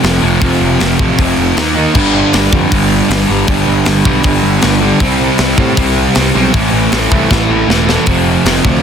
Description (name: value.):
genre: punk rock.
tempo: 157 BPM.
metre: 4/4.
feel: straight.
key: unclear.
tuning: A4 = 441 Hz.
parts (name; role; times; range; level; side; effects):
crunchy overdriven guitar; riff; 0.0-8.8 s; F2 to A#4; -18 LUFS; right 1 dB; none.
distorted electric guitar; riff; 0.0-8.8 s; F2 to D#4; -16 LUFS; left 10 dB; distortion.
sludgy distorted guitar; riff; 0.0-8.8 s; F2 to D#4; -14 LUFS; right 10 dB; overdrive.
fuzz picked electric bass; bass; 0.0-8.8 s; E1 to A2; -16 LUFS; left 1 dB; overdrive.
tight metal drum kit; drums; 0.0-8.7 s; crash cymbal, hi-hat, kick drum, snare drum; -16 LUFS; left 1 dB; soft clipping on kick.
room: little or no reverb.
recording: dense, heavily limited modern master.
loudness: -9 LUFS.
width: side -7 dB against mid.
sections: 0.0-8.1 A section.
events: drum fill 7.3-8.1.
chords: 0.0 F; 1.6 D#5; 2.0 G; 5.0 C; 6.5 Am; 8.1 F.